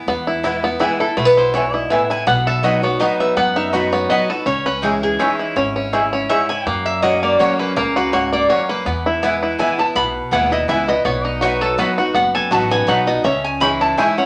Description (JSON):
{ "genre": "bluegrass", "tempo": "164 BPM", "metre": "3/4", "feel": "swing 54% on 8ths", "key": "E major", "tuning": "A4 = 440 Hz", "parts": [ { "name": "picked steel-string acoustic guitar", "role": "accompaniment", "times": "0.0-14.3 s", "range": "E2 to F#4", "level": "-26 LUFS", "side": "equal", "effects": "none" }, { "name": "bluegrass banjo", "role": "arpeggios", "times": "0.1-14.3 s", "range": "A3 to A4", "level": "-22 LUFS", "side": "equal", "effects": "none" }, { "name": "upright bass", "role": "bass", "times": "0.1-13.9 s", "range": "F#1 to F#2", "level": "-31 LUFS", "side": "equal", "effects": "none" }, { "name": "mandolin", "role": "stabs", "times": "0.4-14.1 s", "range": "A#3 to C#6", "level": "-23 LUFS", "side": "equal", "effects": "none" }, { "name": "lap resonator guitar", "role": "melody", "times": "0.8-14.3 s", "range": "G#4 to B5", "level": "-22 LUFS", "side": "equal", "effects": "none" } ], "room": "wet studio ambience, RT60 0.5 s", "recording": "none", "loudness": "-17 LUFS", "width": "mono", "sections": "0.1-14.3 A section", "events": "resonator guitar played with a steel bar solo 0.1-14.3", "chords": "0.1 E; 2.3 B; 4.5 C#madd9; 6.7 F#; 8.9 E; 11.1 B; 13.2 C#madd9" }